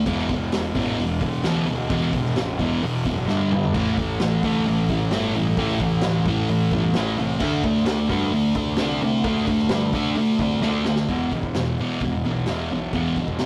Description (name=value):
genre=garage rock duo or trio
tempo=131 BPM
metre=4/4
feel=straight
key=E minor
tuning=A4 = 441 Hz
part: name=thick fuzz guitar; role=riff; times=0.0-13.5 s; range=E2 to D4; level=-24 LUFS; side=equal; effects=distortion
part: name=growling picked electric bass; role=bass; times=0.0-13.5 s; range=E1 to D3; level=-32 LUFS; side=equal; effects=overdrive
part: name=raw garage drum kit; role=drums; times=0.1-13.5 s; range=crash cymbal, hi-hat, kick drum, snare drum, toms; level=-31 LUFS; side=equal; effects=none
room=moderate studio reverb, RT60 0.5 s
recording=rough rehearsal-room recording, warm saturation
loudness=-22 LUFS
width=mono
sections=0.0-11.1 A section; 11.1-13.5 B section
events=drum fill 3.3-3.7, 10.6-11.1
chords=0.1 E5; 3.3 G5; 3.7 A5; 7.4 D5; 11.1 E5